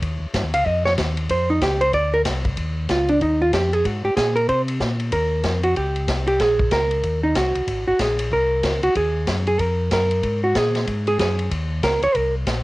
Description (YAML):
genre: soul jazz organ trio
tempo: 188 BPM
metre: 4/4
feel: swing 61% on 8ths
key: unclear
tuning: A4 = 440 Hz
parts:
  - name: mellow tonewheel organ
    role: bass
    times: 0.0-12.6 s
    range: Ab1 to C3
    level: -24 LUFS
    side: equal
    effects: chorus vibrato, slow rotary speaker
  - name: vintage drum kit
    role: drums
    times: 0.0-12.6 s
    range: hi-hat, kick drum, ride cymbal, snare drum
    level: -26 LUFS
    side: left 1 dB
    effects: cassette tape
  - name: hollow-body jazz guitar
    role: accompaniment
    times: 0.5-12.3 s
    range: D4 to F5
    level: -20 LUFS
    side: right 1 dB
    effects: cassette tape
room: light reverb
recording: home recording on cassette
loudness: -18 LUFS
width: side -20 dB against mid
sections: 0.0-2.6 A section; 2.6-12.6 A section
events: hollow-body jazz guitar solo 0.0-2.6, 2.6-12.6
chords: 0.0 Eb9; 1.3 Dbmaj9#11; 1.9 Bbadd9 (rootless); 2.6 Ebsus2; 3.9 Abadd9; 5.1 Eb13; 6.4 Bbm7; 7.0 Cdim; 7.7 Ab13; 10.2 Gbadd9; 11.5 Eb5